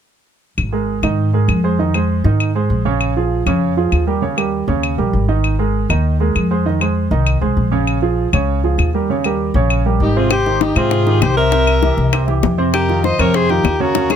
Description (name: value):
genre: Afro-Cuban jazz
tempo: 197 BPM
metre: 4/4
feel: straight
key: Ab major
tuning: A4 = 440 Hz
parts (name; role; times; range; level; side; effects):
- upright bass; bass; 0.6-14.2 s; Ab1 to Ab2; -17 LUFS; left 1 dB; none
- claves; percussion; 0.6-14.2 s; none; -22 LUFS; left 6 dB; none
- warm concert grand piano; accompaniment; 0.7-14.2 s; C3 to Eb5; -18 LUFS; right 5 dB; none
- clear alto saxophone; melody; 10.0-14.2 s; Eb4 to C5; -18 LUFS; left 2 dB; none
- dark erhu; second line; 10.0-14.2 s; G4 to Fb5; -22 LUFS; left 6 dB; none
- bongos; percussion; 10.3-14.2 s; none; -21 LUFS; left 13 dB; none
room: little or no reverb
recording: close, detailed microphones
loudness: -14 LUFS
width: side -8 dB against mid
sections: 0.6-10.3 A section; 10.3-14.2 B section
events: drum fill 13.9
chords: 0.6 Absus2; 1.8 Fm7; 3.0 Bbm7; 4.2 Eb7; 5.4 Absus2; 6.7 Fm7; 7.9 Bbm7; 9.1 Eb7; 10.3 Abmaj7; 11.5 C7; 12.7 F9sus4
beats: | 0.58 0.88 1.19 1.49 | 1.80 2.10 2.40 2.71 | 3.01 3.32 3.62 3.93 | 4.23 4.53 4.84 5.14 | 5.45 5.75 6.05 6.36 | 6.66 6.97 7.27 7.57 | 7.88 8.18 8.49 8.79 | 9.09 9.40 9.70 10.01 | 10.31 10.61 10.92 11.22 | 11.52 11.83 12.13 12.43 | 12.74 13.04 13.34 13.65 | 13.95